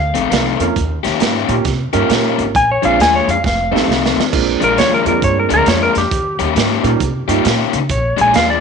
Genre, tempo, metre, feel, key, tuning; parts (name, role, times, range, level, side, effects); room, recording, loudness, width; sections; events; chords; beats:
electric blues shuffle; 134 BPM; 4/4; swing 63% on 8ths; A4 = 437 Hz
clean lap steel guitar; melody; 0.0-8.6 s; G4 to Ab5; -16 LUFS; left 1 dB
upright bass; bass; 0.0-8.6 s; F1 to Db3; -21 LUFS; equal
raw garage guitar; riff; 0.1-8.6 s; F2 to G4; -18 LUFS; left 15 dB; overdrive
crunchy breakbeat drum kit; drums; 0.1-8.5 s; crash cymbal, hi-hat, kick drum, snare drum; -19 LUFS; right 6 dB
clear upright piano; accompaniment; 0.6-7.4 s; G3 to Bb4; -20 LUFS; right 12 dB
light reverb, studio reverb; 1960s-style stereo with parts hard left and right, nothing above 10.4 kHz; -12 LUFS; side -6 dB against mid
0.0-4.3 A section; 4.3-8.6 B section
drum fill 3.4-4.3; electric slide guitar solo 4.3-8.6
0.0 F7; 0.8 Eb7; 2.5 Bb7; 3.4 F7; 4.3 Bb7; 6.1 Eb7; 7.9 Bb7
0.31 | 0.76 1.20 1.65 2.10 | 2.54 2.99 3.44 3.88 | 4.33 4.78 5.22 5.67 | 6.11 6.56 7.01 7.45 | 7.90 8.34